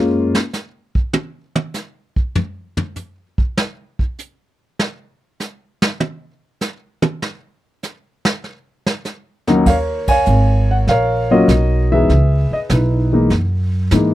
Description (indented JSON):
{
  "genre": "jazz piano trio",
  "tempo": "99 BPM",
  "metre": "4/4",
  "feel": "swing 69% on 8ths",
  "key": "Eb minor",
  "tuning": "A4 = 440 Hz",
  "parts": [
    { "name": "dark grand piano", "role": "melody", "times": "0.0-0.4, 9.5-14.1 s", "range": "Eb2 to Ab5", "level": "-15 LUFS", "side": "left 1 dB", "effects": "none" },
    { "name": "upright bass", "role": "bass", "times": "0.0-0.3, 9.7-14.1 s", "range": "Ab1 to Ab2", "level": "-16 LUFS", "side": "right 1 dB", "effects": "none" },
    { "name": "vintage brush drum kit", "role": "drums", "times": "0.3-14.1 s", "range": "brushed snare drum, crash cymbal, hi-hat, kick drum, ride cymbal, snare drum, toms", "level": "-19 LUFS", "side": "right 1 dB", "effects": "none" }
  ],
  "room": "little or no reverb",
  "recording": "dry, close 1970s-style studio recording",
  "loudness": "-15 LUFS",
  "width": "side -14 dB against mid",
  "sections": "0.0-9.7 A section; 9.7-14.1 B section",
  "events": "grand piano solo 0.0-9.7; drum solo 0.0-9.7; band accent 10.0-10.3",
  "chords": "0.0 N.C.; 9.7 Ebm9; 12.1 Dbm9; 13.3 Gb13"
}